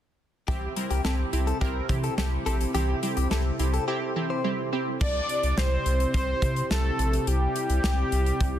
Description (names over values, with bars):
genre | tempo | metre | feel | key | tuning
synth-pop | 106 BPM | 4/4 | straight | C mixolydian | A4 = 441 Hz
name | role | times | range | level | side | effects
direct-recorded clean electric guitar | second line | 0.5-4.5 s | G4 to C5 | -34 LUFS | left 6 dB | tremolo, digital delay
funky polysynth comp | accompaniment | 0.5-5.0 s | C4 to Bb4 | -32 LUFS | right 2 dB | chorus
warm analog pad | sustained chords | 0.5-8.6 s | C3 to A4 | -33 LUFS | equal | chorus
soft round pluck | arpeggios | 0.5-4.9 s | E3 to E5 | -35 LUFS | right 4 dB | chorus, digital delay
round analog bass | bass | 0.5-8.6 s | Bb1 to C3 | -26 LUFS | equal | none
modern studio drum kit | drums | 0.5-8.5 s | crash cymbal, hi-hat, kick drum, snare drum | -31 LUFS | equal | none
fat analog lead | melody | 5.0-8.6 s | G4 to D5 | -28 LUFS | equal | digital delay
room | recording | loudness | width
light reverb, small room ambience | dense, heavily limited modern master | -24 LUFS | side -11 dB against mid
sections
0.5-5.0 A section; 5.0-8.6 B section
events
break 3.9-5.0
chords
0.5 C